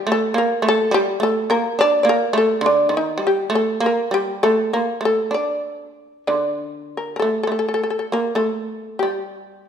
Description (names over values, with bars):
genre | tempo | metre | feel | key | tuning
japanese traditional, Japanese chamber music | 63-70 BPM | 4/4 | rubato | D miyako bushi | A4 = 440 Hz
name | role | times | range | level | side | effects
shamisen | melody | 0.0-9.7 s | D4 to D5 | -19 LUFS | left 1 dB | none
shamisen | second line | 0.0-9.6 s | D3 to D4 | -22 LUFS | right 2 dB | none
room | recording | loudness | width
moderate scoring stage reverb, RT60 1.4 s | minimal, uncompressed stereo recording | -17 LUFS | side -8 dB against mid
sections
0.0-7.2 A section; 7.2-9.7 B section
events
none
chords
none